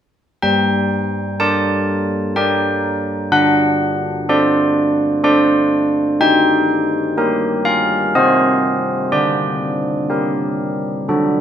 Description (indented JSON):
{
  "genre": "classical, tune for church bells",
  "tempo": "62 BPM",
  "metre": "3/4",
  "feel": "straight",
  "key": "G minor",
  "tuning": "A4 = 442 Hz",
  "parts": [
    { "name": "carillon bells", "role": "solo", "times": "0.4-11.4 s", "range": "G3 to A5", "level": "-14 LUFS", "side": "equal", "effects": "none" }
  ],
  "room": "wet recital hall reverb, RT60 1.4 s",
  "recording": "none",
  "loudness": "-14 LUFS",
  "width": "side -9 dB against mid",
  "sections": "0.4-11.4 A section",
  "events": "none",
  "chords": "0.4 Gm; 3.3 D7; 6.2 Eb; 8.1 Cm; 9.1 Gm/D"
}